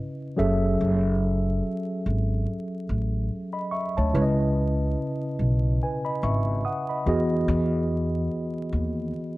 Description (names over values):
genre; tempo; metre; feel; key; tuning
lo-fi hip hop; 72 BPM; 4/4; swing 60% on 16ths; F# dorian; A4 = 439 Hz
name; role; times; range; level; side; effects
mellow tine electric piano; accompaniment; 0.0-9.4 s; C#3 to D#6; -26 LUFS; equal; medium stereo tremolo, cassette tape, low-pass filter
upright bass; bass; 0.4-9.1 s; F#1 to E2; -25 LUFS; equal; none
room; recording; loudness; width
light reverb, small room ambience; dark, warm production, vinyl crackle; -23 LUFS; side -19 dB against mid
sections
0.0-9.4 A section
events
none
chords
0.4 F#m9; 4.1 C#m9; 7.1 Emaj9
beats
| 0.81 1.64 2.47 3.31 | 4.14 4.97 5.80 6.64 | 7.47 8.30 9.14